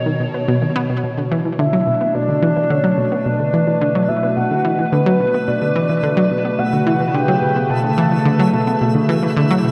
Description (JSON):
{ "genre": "ambient, sequencer-driven space music", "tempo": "108 BPM", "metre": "4/4", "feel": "straight", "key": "B minor", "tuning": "A4 = 443 Hz", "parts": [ { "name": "soft octave-layered synth lead", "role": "melody", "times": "0.0-9.4 s", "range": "B4 to A5", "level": "-23 LUFS", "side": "equal", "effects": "chorus, tremolo, tape echo" }, { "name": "evolving wavetable pad", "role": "sustained chords", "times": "0.0-9.7 s", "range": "B2 to C#5", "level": "-22 LUFS", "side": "equal", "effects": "chorus, built-in reverb" }, { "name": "analog pluck", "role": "riff", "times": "0.1-9.7 s", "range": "B2 to B3", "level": "-20 LUFS", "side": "equal", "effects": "chorus, tape echo" }, { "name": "twinkling granular texture", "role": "texture", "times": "2.3-9.7 s", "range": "E4 to E5", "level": "-36 LUFS", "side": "equal", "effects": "built-in reverb" } ], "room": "wet lush hall reverb, RT60 2.6 s", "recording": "dreamy mix soaked in reverb", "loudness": "-17 LUFS", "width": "mono", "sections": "0.0-1.0 A section; 1.0-9.7 B section", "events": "fade-in on synth texture 1.0-9.7", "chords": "0.0 B; 1.0 Bm7" }